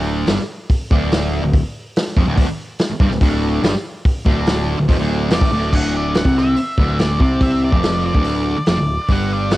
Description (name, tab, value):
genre	garage rock duo or trio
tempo	143 BPM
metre	4/4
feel	straight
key	unclear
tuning	A4 = 441 Hz
part	fuzz guitar	riff	0.0-9.6 s	D2 to C4	-19 LUFS	equal	distortion, cassette tape
part	growling picked electric bass	bass	0.0-9.6 s	D1 to C2	-22 LUFS	equal	overdrive
part	vintage drum kit	drums	0.3-9.6 s	crash cymbal, hi-hat, kick drum, snare drum	-18 LUFS	equal	cassette tape
part	octave-fuzz lead guitar	melody	5.3-9.6 s	D5 to F#5	-24 LUFS	equal	distortion, cassette tape
room	light reverb, studio ambience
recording	home recording on cassette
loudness	-15 LUFS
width	side -17 dB against mid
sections	0.0-5.7 A section; 5.7-9.6 B section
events	none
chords	0.0 D5; 5.7 Dm9